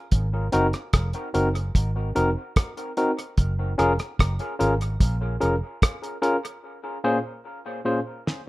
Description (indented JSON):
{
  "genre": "lovers rock reggae",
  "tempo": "74 BPM",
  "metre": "4/4",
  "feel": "straight",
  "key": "unclear",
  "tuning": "A4 = 440 Hz",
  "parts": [
    { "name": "vintage muted fingered electric bass", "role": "bass", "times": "0.1-5.6 s", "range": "F1 to Bb1", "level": "-25 LUFS", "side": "equal", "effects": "none" },
    { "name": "cloth-damped thuddy drum kit", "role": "drums", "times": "0.1-8.5 s", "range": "hi-hat, kick drum, rim click, snare drum", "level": "-22 LUFS", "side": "equal", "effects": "dub echo" },
    { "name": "barky tine electric piano", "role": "accompaniment", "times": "0.5-8.0 s", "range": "Bb2 to C5", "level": "-25 LUFS", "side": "left 1 dB", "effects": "dub echo" }
  ],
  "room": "light reverb",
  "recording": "rough home demo mix",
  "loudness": "-22 LUFS",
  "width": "side -19 dB against mid",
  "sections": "0.0-8.5 A section",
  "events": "break 6.6-8.5; drum fill 8.3",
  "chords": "0.1 Ab7; 3.4 Gbmaj7; 6.6 Bbm7",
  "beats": "| 0.12 0.94 1.75 2.57 | 3.38 4.20 5.01 5.83 | 6.64 7.45 8.27"
}